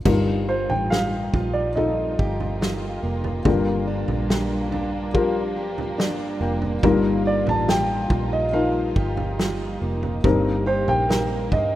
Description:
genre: pop ballad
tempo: 71 BPM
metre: 4/4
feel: straight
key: unclear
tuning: A4 = 445 Hz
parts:
  - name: felt-muted upright piano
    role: accompaniment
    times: 0.0-11.8 s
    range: G2 to G5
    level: -24 LUFS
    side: left 4 dB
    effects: none
  - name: vintage muted fingered electric bass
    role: bass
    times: 0.0-11.8 s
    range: F1 to G2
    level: -28 LUFS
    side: right 1 dB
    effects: none
  - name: warm studio string section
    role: sustained chords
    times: 0.1-11.8 s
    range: G3 to F4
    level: -33 LUFS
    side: right 1 dB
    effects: none
  - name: fingerpicked plugged-in steel-string acoustic guitar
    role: arpeggios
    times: 0.1-11.8 s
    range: G2 to Bb4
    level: -29 LUFS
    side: right 2 dB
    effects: digital delay
  - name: natural country drum kit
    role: drums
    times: 0.1-11.7 s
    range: crash cymbal, kick drum, snare drum, toms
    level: -25 LUFS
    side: right 1 dB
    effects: none
  - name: warm grand piano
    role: melody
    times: 0.5-11.8 s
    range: C5 to A5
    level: -25 LUFS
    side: right 2 dB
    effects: none
room: light reverb, small room ambience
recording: rough home demo mix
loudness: -20 LUFS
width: side -14 dB against mid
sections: 0.1-11.8 A section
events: felt piano fill 5.6-6.8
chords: 0.1 Ebsus2/G; 3.5 Gm7; 6.8 Ebsus2/G; 10.2 Cm7/G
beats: | 0.06 0.91 1.77 2.61 | 3.46 4.30 5.15 5.99 | 6.84 7.68 8.54 9.39 | 10.24 11.10

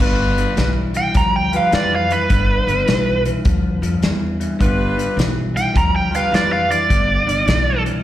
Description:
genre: electric blues shuffle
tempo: 104 BPM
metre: 4/4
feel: swing 66% on 8ths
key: G mixolydian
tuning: A4 = 440 Hz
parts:
  - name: electric guitar through a small old amp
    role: riff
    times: 0.0-8.0 s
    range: G2 to F3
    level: -23 LUFS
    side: left 2 dB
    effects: slapback echo
  - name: bright horn section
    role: stabs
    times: 0.0-6.8 s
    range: F4 to B4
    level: -23 LUFS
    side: left 2 dB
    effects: plate reverb, slapback echo
  - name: upright bass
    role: bass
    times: 0.0-7.9 s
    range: G1 to F2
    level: -21 LUFS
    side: equal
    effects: none
  - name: natural country drum kit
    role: drums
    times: 0.0-7.9 s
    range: hi-hat, kick drum, snare drum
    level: -21 LUFS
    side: equal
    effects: none
  - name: biting lead guitar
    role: melody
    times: 1.0-7.8 s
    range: B4 to Bb5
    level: -19 LUFS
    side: right 2 dB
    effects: overdrive, plate reverb, slapback echo, analog delay
room: light reverb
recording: live gig heard through the venue's PA, recital hall reverb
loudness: -15 LUFS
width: side -13 dB against mid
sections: 0.0-8.0 A section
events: none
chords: 0.0 G7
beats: | 0.01 0.58 1.15 1.73 | 2.30 2.88 3.45 4.02 | 4.60 5.17 5.75 6.32 | 6.89 7.47

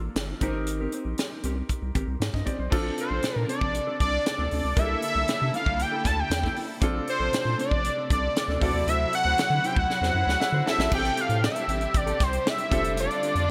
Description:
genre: polished 1980s jazz-funk pop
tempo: 117 BPM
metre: 4/4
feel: straight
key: unclear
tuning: A4 = 440 Hz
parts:
  - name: clear grand piano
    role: accompaniment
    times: 0.0-13.5 s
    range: Bb3 to A5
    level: -37 LUFS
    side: equal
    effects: lush chorus
  - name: mellow electric guitar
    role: riff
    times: 0.0-13.5 s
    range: Bb3 to C5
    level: -39 LUFS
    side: equal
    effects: analog chorus
  - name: round analog bass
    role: bass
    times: 0.0-13.5 s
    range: F1 to D3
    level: -31 LUFS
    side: equal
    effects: none
  - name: tight funk drum kit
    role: drums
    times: 0.2-13.5 s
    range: crash cymbal, hi-hat, kick drum, snare drum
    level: -31 LUFS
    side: equal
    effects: gated reverb
  - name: clear studio string section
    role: sustained chords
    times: 2.7-13.5 s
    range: C3 to A4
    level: -39 LUFS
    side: equal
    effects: none
  - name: fat analog lead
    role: melody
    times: 3.0-13.5 s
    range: C5 to A5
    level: -28 LUFS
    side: equal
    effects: none
room: moderate lush hall reverb, RT60 1.8 s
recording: bright 1980s-style digital production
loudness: -26 LUFS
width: mono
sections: 0.0-2.7 A section; 2.7-10.9 B section; 10.9-13.5 C section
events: drum fill 9.9-10.9; grand piano fill 10.2-10.9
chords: 0.4 Abmaj9; 2.7 Bbmaj9; 4.8 C13; 6.8 Bbmaj9; 8.6 D9; 10.9 Am7; 12.7 F6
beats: 0.16 | 0.67 1.18 1.70 2.21 | 2.72 3.23 3.75 4.26 | 4.77 5.29 5.80 6.31 | 6.82 7.33 7.85 8.36 | 8.87 9.39 9.90 10.41 | 10.92 11.44 11.95 12.46 | 12.97 13.49

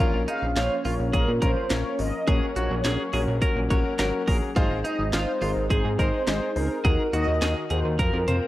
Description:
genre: synth-pop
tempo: 105 BPM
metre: 4/4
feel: straight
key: Bb minor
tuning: A4 = 441 Hz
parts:
  - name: twelve-string electric guitar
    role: second line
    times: 0.0-8.4 s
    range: Eb4 to Db5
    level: -31 LUFS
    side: right 2 dB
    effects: ping-pong delay
  - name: warm concert grand piano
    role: accompaniment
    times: 0.0-8.5 s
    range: C4 to Db5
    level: -30 LUFS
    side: left 3 dB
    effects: none
  - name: phased analog pad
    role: sustained chords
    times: 0.0-8.5 s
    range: Eb3 to Bb4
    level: -33 LUFS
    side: equal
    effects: phaser, chorus
  - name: fat analog bass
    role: bass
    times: 0.0-8.4 s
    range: Ab1 to Bb2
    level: -27 LUFS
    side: equal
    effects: none
  - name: mellow synth brass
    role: melody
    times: 0.3-8.5 s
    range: Ab4 to F5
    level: -30 LUFS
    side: equal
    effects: chorus, ping-pong delay
  - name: house drum kit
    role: drums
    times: 0.3-8.4 s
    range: hi-hat, kick drum, snare drum, toms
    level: -26 LUFS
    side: equal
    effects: none
room: moderate plate reverb, RT60 1.7 s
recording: worn, warbling old tape, cassette tape, warbly pitch drift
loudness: -22 LUFS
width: side -15 dB against mid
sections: 0.0-8.5 A section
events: drum fill 8.0-8.5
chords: 0.0 Bbm; 2.3 Gb/Bb; 4.6 Ab; 6.8 Ebm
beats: 0.56 1.13 1.70 | 2.28 2.85 3.42 3.99 | 4.56 5.13 5.70 6.28 | 6.85 7.42 7.99

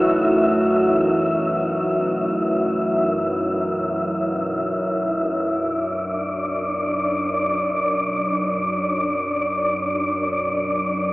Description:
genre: dark ambient drone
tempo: free time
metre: none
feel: none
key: unclear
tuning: A4 = 440 Hz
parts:
  - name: sweeping resonant pad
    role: sustained chords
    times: 0.0-5.4 s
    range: E3 to F#4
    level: -22 LUFS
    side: equal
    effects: chorus, phaser
  - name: organ-like drone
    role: drone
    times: 0.0-11.1 s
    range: B1 to F#2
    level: -27 LUFS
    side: equal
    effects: ensemble chorus, built-in reverb
  - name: wind-like tuned noise texture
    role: texture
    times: 0.0-11.1 s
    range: D4 to E5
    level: -21 LUFS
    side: equal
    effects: built-in reverb
room: wet huge ambient reverb, RT60 7.5 s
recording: small speaker sound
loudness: -19 LUFS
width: side -20 dB against mid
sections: 0.0-5.4 A section; 5.4-11.1 B section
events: filter sweep on synth drone 5.4-11.1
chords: 0.0 F#m7; 5.4 Bm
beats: free time

